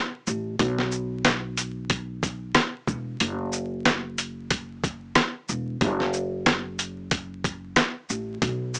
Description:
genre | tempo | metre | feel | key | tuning
hip hop, boom-bap hip-hop | 92 BPM | 4/4 | swing 58% on 16ths | F# minor | A4 = 441 Hz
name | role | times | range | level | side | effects
upright bass | bass | 0.3-8.8 s | E1 to B1 | -32 LUFS | equal | none
dusty soul sampler-style drum kit | drums | 0.3-8.8 s | hi-hat, kick drum, rim click, shaker, snare drum | -25 LUFS | equal | vintage 12-bit sampler grit
room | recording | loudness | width
little or no reverb | dry, gritty hardware recording, vinyl crackle, small speaker sound | -27 LUFS | mono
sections
0.0-8.8 A section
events
kick muted 3.2-4.5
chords
none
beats
| 0.59 1.25 1.90 2.55 | 3.20 3.85 4.51 5.16 | 5.81 6.46 7.12 7.77 | 8.42

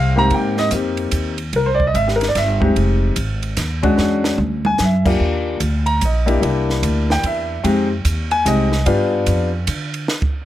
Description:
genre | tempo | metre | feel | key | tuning
jazz piano trio | 147 BPM | 3/4 | swing 64% on 8ths | C minor | A4 = 444 Hz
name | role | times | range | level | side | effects
warm baby grand piano | melody | 0.0-9.5 s | Ab2 to Bb5 | -18 LUFS | left 2 dB | none
upright bass | bass | 0.0-10.1 s | F1 to D3 | -19 LUFS | equal | none
compact cocktail drum kit | drums | 0.3-10.4 s | crash cymbal, hi-hat, kick drum, ride cymbal, snare drum, toms | -24 LUFS | right 2 dB | none
room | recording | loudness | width
light reverb | none | -15 LUFS | side -13 dB against mid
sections
0.3-10.1 A section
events
grand piano solo 0.0-10.1; drum fill 4.0-4.8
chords
0.3 Abmaj7; 1.5 C; 2.8 Fm7; 4.0 E13; 5.2 Ebmaj7; 6.4 C7; 7.6 Fm7; 8.9 G7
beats
| 0.31 0.72 1.12 | 1.53 1.94 2.35 | 2.76 3.16 3.57 | 3.98 4.39 4.79 | 5.20 5.61 6.01 | 6.42 6.83 7.24 | 7.64 8.05 8.46 | 8.86 9.27 9.68 | 10.08

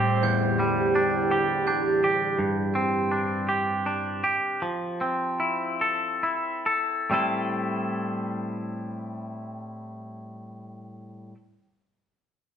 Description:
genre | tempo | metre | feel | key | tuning
rock | 44-56 BPM (dotted quarters) | 6/8 | straight | A minor | A4 = 440 Hz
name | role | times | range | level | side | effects
glassy FM pad | sustained chords | 0.0-2.4 s | E2 to C5 | -26 LUFS | right 1 dB | ensemble chorus, built-in reverb
glockenspiel with hard plastic mallets | arpeggios | 0.0-2.4 s | G6 to A6 | -35 LUFS | right 6 dB | none
twangy electric guitar | arpeggios | 0.0-11.4 s | E2 to A4 | -26 LUFS | equal | none
room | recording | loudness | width
wet studio reverb, RT60 0.9 s | band playing live in one room, nothing above 11.0 kHz | -23 LUFS | side -8 dB against mid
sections
0.0-7.1 A section; 7.1-12.5 B section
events
slowing down 2.4-7.1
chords
0.2 Em7; 2.4 Gsus4; 4.6 Fmaj7; 7.1 Am7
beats
| 0.23 1.31 | 2.39 3.48 | 4.61 5.81 | 7.10 8.45 | 9.80 11.15

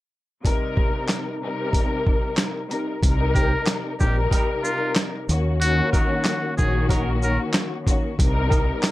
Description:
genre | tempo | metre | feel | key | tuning
hip hop, boom-bap hip-hop | 93 BPM | 4/4 | swing 57% on 16ths | C minor | A4 = 440 Hz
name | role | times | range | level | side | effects
dark studio string section | accompaniment | 0.4-8.9 s | C3 to Bb4 | -25 LUFS | left 2 dB | cassette tape, high-pass filter, low-pass filter
boom bap sampler-style drum kit | drums | 0.4-8.9 s | handclaps, hi-hat, kick drum, shaker, snare drum | -22 LUFS | equal | none
deep dub fingered electric bass | bass | 3.0-8.7 s | Bb1 to Eb2 | -23 LUFS | equal | none
trumpet with metal mute | melody | 3.3-7.4 s | F4 to Bb4 | -26 LUFS | equal | high-pass filter, low-pass filter
mellow saxophone section | stabs | 3.4-8.7 s | Eb3 to Bb4 | -30 LUFS | right 2 dB | high-pass filter, low-pass filter, analog delay
room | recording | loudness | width
little or no reverb | none | -20 LUFS | side -17 dB against mid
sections
0.4-3.0 A section; 3.0-8.9 B section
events
none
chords
0.4 Cm7; 5.3 Ebm7; 8.2 Cm7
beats
| 0.45 1.09 1.74 2.38 | 3.03 3.67 4.32 4.96 | 5.61 6.25 6.90 7.54 | 8.19 8.83

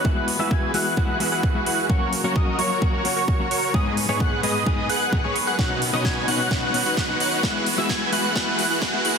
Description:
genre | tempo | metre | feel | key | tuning
EDM, festival progressive house | 130 BPM | 4/4 | straight | unclear | A4 = 440 Hz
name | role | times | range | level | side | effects
semi-hollow electric guitar | accompaniment | 0.0-9.0 s | G#2 to G#4 | -28 LUFS | left 4 dB | tremolo, sidechain pumping, ping-pong delay
rich chamber string section | sustained chords | 0.0-9.2 s | C#3 to B4 | -32 LUFS | equal | sidechain pumping, low-pass filter
wide unison lead | arpeggios | 0.0-9.2 s | C#6 to G#6 | -26 LUFS | equal | wide subtle chorus, cassette tape, sidechain pumping, ping-pong delay
dense compressed supersaw | riff | 0.0-9.2 s | D#4 to G#5 | -26 LUFS | right 1 dB | sidechain pumping, low-pass filter, ping-pong delay
electronic kick drum | drums | 0.0-8.9 s | none | -24 LUFS | equal | none
riser | sound effects | 4.0-9.2 s | none | -32 LUFS | right 1 dB | none
big-room dance drum kit | drums | 0.3-9.1 s | hi-hat, snare drum | -28 LUFS | right 4 dB | soft clipping on snare, high-pass filter on snare, high-pass filter on toms, high-pass filter on hats
room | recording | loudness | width
moderate lush hall reverb, RT60 2.0 s | dense, heavily limited modern master, high-pass filter | -19 LUFS | side -6 dB against mid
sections
0.0-9.2 A section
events
build-up 0.0-9.2; filter sweep on supersaw synth 0.0-9.2; filter sweep on analog synth lead 0.0-9.2; filter sweep 0.0-9.2; riser 4.0-9.2; drum fill 5.6-9.2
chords
0.0 Eadd9; 1.9 F#; 3.7 G#m; 5.6 Badd9; 7.4 Eadd9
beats
| 0.05 0.51 0.97 1.43 | 1.90 2.36 2.82 3.28 | 3.74 4.20 4.66 5.13 | 5.59 6.05 6.51 6.97 | 7.43 7.89 8.36 8.82

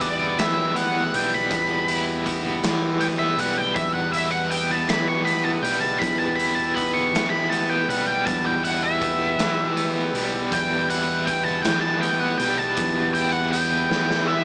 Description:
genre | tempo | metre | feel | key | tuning
psychedelic rock | 53 BPM (dotted quarters) | 6/8 | straight | E minor | A4 = 441 Hz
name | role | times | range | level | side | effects
octave-fuzz lead guitar | melody | 0.0-14.4 s | D5 to C#6 | -26 LUFS | equal | wah, distortion, analog delay
combo organ | sustained chords | 0.0-14.4 s | G3 to B4 | -33 LUFS | equal | none
crunchy overdriven guitar | riff | 0.0-14.4 s | E2 to E4 | -29 LUFS | equal | tremolo
fingered electric bass | bass | 0.0-14.4 s | B1 to E3 | -33 LUFS | equal | none
hand-pumped harmonium | drone | 0.0-14.4 s | E2 to B2 | -37 LUFS | equal | none
raw garage drum kit | drums | 0.0-14.3 s | hi-hat, kick drum, snare drum | -32 LUFS | equal | none
congas | percussion | 0.0-14.4 s | none | -41 LUFS | equal | none
room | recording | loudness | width
light reverb | small speaker sound | -23 LUFS | mono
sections
0.0-14.4 A section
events
lead electric guitar solo 0.0-14.4; drum fill 13.9-14.4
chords
0.0 Em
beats
0.39 | 1.51 2.64 | 3.77 4.89 | 6.02 7.14 | 8.27 9.39 | 10.52 11.65 | 12.78 13.90

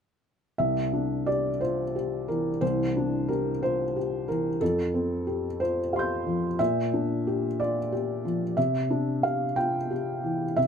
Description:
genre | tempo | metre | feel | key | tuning
neoclassical minimalist piano | 60 BPM (dotted quarters) | 6/8 | rubato | C mixolydian | A4 = 439 Hz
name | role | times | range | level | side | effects
felt-muted upright piano | solo | 0.6-10.7 s | C2 to G6 | -25 LUFS | equal | none
room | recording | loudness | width
light reverb | close, detailed microphones | -25 LUFS | side -7 dB against mid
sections
0.6-10.7 A section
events
none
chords
0.6 Cadd9; 4.6 Fadd9; 6.6 Bb6; 8.6 Cadd9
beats
| 0.58 1.61 | 2.62 3.62 | 4.61 5.60 | 6.59 7.59 | 8.56 9.56 | 10.57

